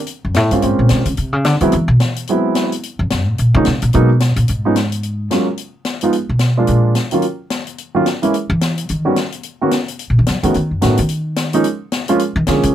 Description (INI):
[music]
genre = jazz, small-group swing and bop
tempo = 218 BPM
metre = 4/4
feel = swing 60% on 8ths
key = Db major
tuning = A4 = 439 Hz
[part]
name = open jazz drum kit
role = drums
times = 0.1-12.7 s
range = hi-hat, snare drum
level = -22 LUFS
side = left 4 dB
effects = none
[part]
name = upright bass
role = bass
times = 0.2-12.7 s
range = F2 to F#3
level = -15 LUFS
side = equal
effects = none
[part]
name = warm grand piano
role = accompaniment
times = 0.5-12.7 s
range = D#3 to G#4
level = -15 LUFS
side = right 2 dB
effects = none
[sound]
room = little or no reverb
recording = none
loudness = -14 LUFS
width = side -11 dB against mid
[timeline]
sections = 0.0-5.0 A section; 5.0-12.7 A section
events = upright bass solo 0.0-12.7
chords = 0.1 F; 0.6 Bbm9; 1.7 Ab7alt; 2.8 Db6; 3.9 Abm7; 4.5 Db7; 5.0 F#maj7; 6.1 Fdim; 6.7 A#7; 7.2 D#m9; 8.3 N.C.; 8.9 D#7alt; 9.4 Bmaj9#11; 10.5 B9; 11.6 A#m7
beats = 0.08 0.36 | 0.63 0.91 1.18 1.46 | 1.73 2.01 2.28 2.56 | 2.83 3.11 3.38 3.66 | 3.93 4.21 4.48 4.76 | 5.03 5.31 5.58 5.86 | 6.13 6.41 6.69 6.96 | 7.24 7.51 7.79 8.06 | 8.34 8.62 8.89 9.17 | 9.44 9.72 9.99 10.27 | 10.55 10.82 11.10 11.37 | 11.65 11.93 12.20 12.48